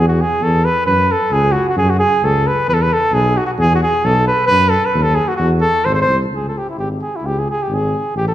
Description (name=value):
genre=balkan folk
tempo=132 BPM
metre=2/4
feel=swing 56% on 16ths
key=E major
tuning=A4 = 441 Hz
part: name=warm cornet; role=melody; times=0.0-8.3 s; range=E4 to B#4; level=-15 LUFS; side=equal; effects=none
part: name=mellow tuba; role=bass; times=0.0-8.3 s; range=G#1 to F#2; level=-17 LUFS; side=equal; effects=none
room=wet recital hall reverb, RT60 1.7 s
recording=heard from further back in the room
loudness=-13 LUFS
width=side -12 dB against mid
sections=0.0-6.3 A section; 6.3-8.3 B section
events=none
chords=0.0 E5; 0.9 F#5; 2.7 E5; 4.5 D#dim; 5.4 Esus24; 5.9 G#; 6.3 C#5